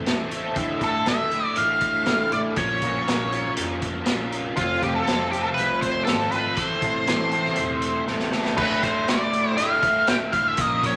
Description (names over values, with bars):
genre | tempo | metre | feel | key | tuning
psychedelic rock | 120 BPM | 4/4 | straight | D minor | A4 = 442 Hz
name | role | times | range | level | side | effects
overdriven electric guitar | riff | 0.0-11.0 s | D2 to Bb4 | -28 LUFS | equal | rotary speaker
vintage muted picked electric bass | bass | 0.1-11.0 s | D1 to C2 | -40 LUFS | equal | none
vintage drum kit | drums | 0.1-11.0 s | crash cymbal, hi-hat, kick drum, snare drum | -30 LUFS | equal | none
octave-fuzz lead guitar | melody | 0.8-11.0 s | F4 to G5 | -25 LUFS | equal | wah, distortion
room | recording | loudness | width
wet large studio reverb, RT60 1.4 s | none | -23 LUFS | mono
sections
0.0-8.6 A section; 8.6-11.0 B section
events
drum fill 8.1-8.6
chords
0.0 Am; 0.6 Dmadd9; 2.6 Bbm; 4.6 F; 6.6 Am; 8.6 Dmadd9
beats
0.07 | 0.57 1.07 1.57 2.08 | 2.58 3.08 3.58 4.08 | 4.58 5.08 5.58 6.08 | 6.58 7.08 7.59 8.09 | 8.59 9.09 9.59 10.09 | 10.59